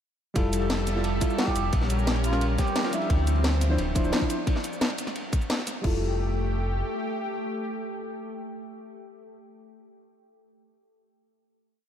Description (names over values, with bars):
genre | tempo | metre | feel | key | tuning
liquid drum and bass | 175 BPM | 4/4 | straight | F major | A4 = 443 Hz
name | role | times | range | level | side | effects
deep mellow chord stab | accompaniment | 0.3-9.9 s | F3 to E5 | -32 LUFS | equal | chorus, tape echo
lush unison pad | sustained chords | 0.4-9.3 s | G3 to E5 | -33 LUFS | left 1 dB | chorus, sidechain pumping
sub bass with octave | bass | 0.4-6.8 s | D1 to D2 | -26 LUFS | equal | none
crunchy breakbeat drum kit | drums | 0.4-5.8 s | ride cymbal, snare drum | -37 LUFS | equal | high-pass filter on cymbals, high-pass filter on snare, high-pass filter on room
electronic kick drum | drums | 0.4-5.9 s | none | -26 LUFS | equal | none
garage drum kit | drums | 0.4-5.9 s | cabasa, crash cymbal, hi-hat, snare drum | -31 LUFS | left 1 dB | none
trumpet with bucket mute | melody | 1.4-2.9 s | F4 to G4 | -34 LUFS | right 2 dB | ping-pong delay
room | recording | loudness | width
light reverb, studio reverb | none | -24 LUFS | side -9 dB against mid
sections
0.4-5.8 drop; 5.8-8.6 final chord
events
drop 0.4-5.8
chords
0.4 Fmaj9; 1.7 Bbm6; 3.1 Dm9; 4.5 N.C.; 5.8 Fmaj9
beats
| 0.36 0.70 1.04 1.39 | 1.73 2.07 2.41 2.76 | 3.10 3.44 3.79 4.13 | 4.47 4.81 5.16 5.50 | 5.84 6.19 6.53 6.87 | 7.21 7.56 7.90 8.24